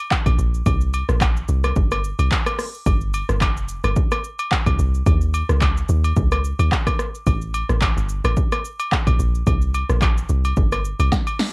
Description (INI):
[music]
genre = amapiano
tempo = 109 BPM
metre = 4/4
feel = swing 55% on 16ths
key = unclear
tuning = A4 = 442 Hz
[part]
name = deep house drum kit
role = drums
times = 0.1-11.5 s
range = handclaps, hi-hat, kick drum, rim click, shaker, snare drum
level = -20 LUFS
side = equal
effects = cassette tape
[part]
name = woodblock and agogo bells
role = percussion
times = 0.1-11.4 s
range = none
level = -27 LUFS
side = equal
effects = none
[part]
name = deep log drum bass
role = bass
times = 0.3-11.1 s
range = F1 to D#2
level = -19 LUFS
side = equal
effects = none
[sound]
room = little or no reverb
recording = home recording on cassette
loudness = -17 LUFS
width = side -28 dB against mid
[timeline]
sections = 0.0-11.5 A section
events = drum fill 11.1-11.5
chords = none